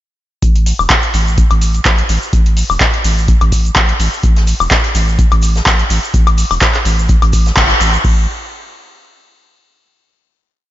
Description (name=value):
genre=acid house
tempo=126 BPM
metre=4/4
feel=swing 55% on 16ths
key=unclear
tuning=A4 = 440 Hz
part: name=round analog bass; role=bass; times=0.4-8.3 s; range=E1 to A1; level=-14 LUFS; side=equal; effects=sidechain pumping
part: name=electro analog drum machine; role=drums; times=0.4-8.1 s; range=cabasa, crash cymbal, handclaps, hi-hat, woodblock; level=-15 LUFS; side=left 1 dB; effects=none
part: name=electronic kick drum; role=drums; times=0.4-8.1 s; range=none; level=-13 LUFS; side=equal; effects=none
part: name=unplugged drum kit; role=drums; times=4.2-7.9 s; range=hi-hat, shaker, snare drum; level=-28 LUFS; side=left 2 dB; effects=none
room=light reverb, small room ambience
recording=nothing above 7.6 kHz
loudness=-10 LUFS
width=side -14 dB against mid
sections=0.4-8.0 groove; 8.0-9.9 final note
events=band accent 7.6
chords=none